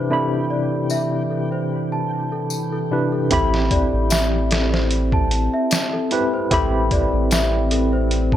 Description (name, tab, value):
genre	trip hop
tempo	75 BPM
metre	4/4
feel	swing 54% on 16ths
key	A minor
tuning	A4 = 439 Hz
part	tine electric piano	accompaniment	0.0-8.4 s	C3 to B5	-22 LUFS	equal	medium stereo tremolo, tape echo
part	warbly tape-like pad	sustained chords	0.0-8.4 s	E3 to E4	-27 LUFS	right 1 dB	chorus, built-in reverb
part	celesta	arpeggios	0.0-8.4 s	A4 to A5	-25 LUFS	left 2 dB	vintage 12-bit sampler grit, digital delay
part	backwards swelling texture	texture	0.0-3.3 s	G4	-38 LUFS	equal	built-in reverb
part	tambourine	percussion	0.9-7.5 s	none	-28 LUFS	left 7 dB	none
part	soft dub sub bass	bass	3.3-8.4 s	A1	-21 LUFS	equal	none
part	trip hop sampler-style drum kit	drums	3.3-8.4 s	hi-hat, kick drum, snare drum	-22 LUFS	equal	vintage 12-bit sampler grit
room	light reverb, digital ambience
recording	none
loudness	-18 LUFS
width	side -11 dB against mid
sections	0.0-3.3 A section; 3.3-8.4 B section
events	filter sweep 0.0-3.3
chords	0.0 Cmaj9; 3.3 Am9